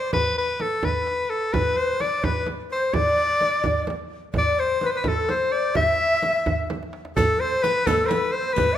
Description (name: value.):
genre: Persian modal ensemble.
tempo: 85 BPM (dotted quarters).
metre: 6/8.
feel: straight.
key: unclear.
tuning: A4 = 440 Hz.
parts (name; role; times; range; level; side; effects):
clear soprano saxophone; melody; 0.0-8.8 s; A4 to E5; -22 LUFS; left 1 dB; none.
frame drum; percussion; 0.1-8.7 s; none; -29 LUFS; right 3 dB; none.
tombak; percussion; 0.1-8.7 s; none; -30 LUFS; right 2 dB; none.
breathy low ney; second line; 1.5-8.8 s; A4 to E5; -26 LUFS; left 3 dB; none.
riq; percussion; 7.2-8.7 s; none; -34 LUFS; right 5 dB; none.
room: moderate recital hall reverb, RT60 1.6 s.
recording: minimal, uncompressed stereo recording.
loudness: -20 LUFS.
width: side -11 dB against mid.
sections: 0.0-7.2 A section; 7.2-8.8 B section.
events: drum fill 6.7-7.2.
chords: none.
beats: | 0.13 0.83 | 1.54 2.24 | 2.94 3.65 | 4.35 5.05 | 5.76 6.46 | 7.16 7.86 | 8.57.